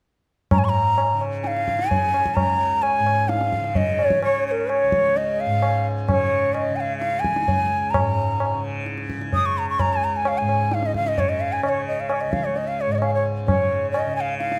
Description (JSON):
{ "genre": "indian classical, Hindustani", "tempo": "130 BPM", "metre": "4/4", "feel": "straight", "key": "Db raga bhupali", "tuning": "A4 = 440 Hz", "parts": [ { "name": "breathy bright bansuri", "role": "melody", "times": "0.5-14.6 s", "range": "Bb4 to Eb6", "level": "-24 LUFS", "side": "equal", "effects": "none" }, { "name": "tanpura", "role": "drone", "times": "0.5-14.6 s", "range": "Db2 to Db3", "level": "-30 LUFS", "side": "equal", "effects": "none" }, { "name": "tabla", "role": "percussion", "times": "0.5-14.6 s", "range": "none", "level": "-28 LUFS", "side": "equal", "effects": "none" } ], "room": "moderate recital hall reverb, RT60 1.5 s", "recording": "close, detailed microphones", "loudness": "-22 LUFS", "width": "mono", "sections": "0.5-14.6 A section", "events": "none", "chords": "none", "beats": "| 0.52 0.98 1.45 1.91 | 2.38 2.84 3.31 3.77 | 4.23 4.70 5.16 5.63 | 6.09 6.55 7.02 7.48 | 7.94 8.40 8.87 9.33 | 9.79 10.25 10.71 11.18 | 11.64 12.10 12.56 13.02 | 13.48 13.94 14.39" }